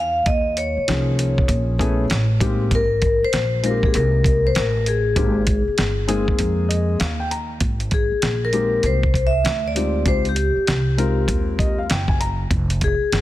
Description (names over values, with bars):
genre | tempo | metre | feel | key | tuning
hip hop, jazz-hop | 98 BPM | 4/4 | swing 64% on 16ths | Ab major | A4 = 439 Hz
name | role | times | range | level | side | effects
vibraphone with medium hard mallets | melody | 0.0-13.2 s | G4 to F5 | -22 LUFS | left 2 dB | none
upright bass | bass | 0.0-13.2 s | F1 to F2 | -22 LUFS | equal | none
dusty soul sampler-style drum kit | drums | 0.3-13.2 s | hi-hat, kick drum, snare drum | -22 LUFS | equal | none
dark concert grand piano | accompaniment | 0.9-12.5 s | F3 to Bb5 | -25 LUFS | left 3 dB | none
room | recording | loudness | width
light reverb, small room ambience | dense, heavily limited modern master | -17 LUFS | side -14 dB against mid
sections
0.0-7.6 A section; 7.6-13.2 B section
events
break 6.4-7.6; grand piano fill 6.4-7.6, 11.3-12.5; vibraphone solo 7.6-13.2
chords
0.0 Eb9sus4; 2.1 Amaj7; 2.7 Abmaj7; 7.6 Abmaj9; 9.4 Fm13/D; 10.1 Dbmaj9#11; 12.5 Fmadd9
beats
| 0.27 0.88 1.49 2.10 | 2.71 3.33 3.94 4.55 | 5.16 5.78 6.39 7.00 | 7.61 8.22 8.84 9.45 | 10.06 10.67 11.29 11.90 | 12.51 13.12